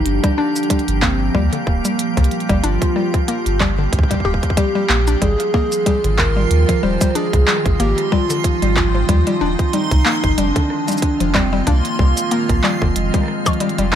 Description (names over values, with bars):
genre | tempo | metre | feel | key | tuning
IDM | 93 BPM | 4/4 | swing 56% on 16ths | G phrygian | A4 = 440 Hz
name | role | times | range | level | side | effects
warbly nostalgic lead | melody | 0.0-13.9 s | Ab3 to C5 | -22 LUFS | equal | chorus, cassette tape, digital delay
icy glass pad | sustained chords | 0.0-14.0 s | Eb3 to G4 | -23 LUFS | right 2 dB | chorus, built-in reverb
warm sub bass | bass | 0.0-14.0 s | D1 to Eb2 | -18 LUFS | equal | none
glitchy drum kit | drums | 0.1-14.0 s | cabasa, handclaps, hi-hat, percussion blips, rim click | -23 LUFS | right 1 dB | overdrive
mallet-like synth pluck | arpeggios | 0.2-14.0 s | D3 to G4 | -22 LUFS | left 5 dB | chorus, vintage 12-bit sampler grit, tape echo
electronic kick drum | drums | 0.2-14.0 s | none | -19 LUFS | equal | overdrive
backwards swelling texture | texture | 6.3-14.0 s | C6 | -29 LUFS | right 2 dB | built-in reverb
room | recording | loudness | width
little or no reverb | none | -14 LUFS | side -9 dB against mid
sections
0.0-14.0 A section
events
none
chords
0.0 Gm7; 5.2 Ab6; 10.4 Fm7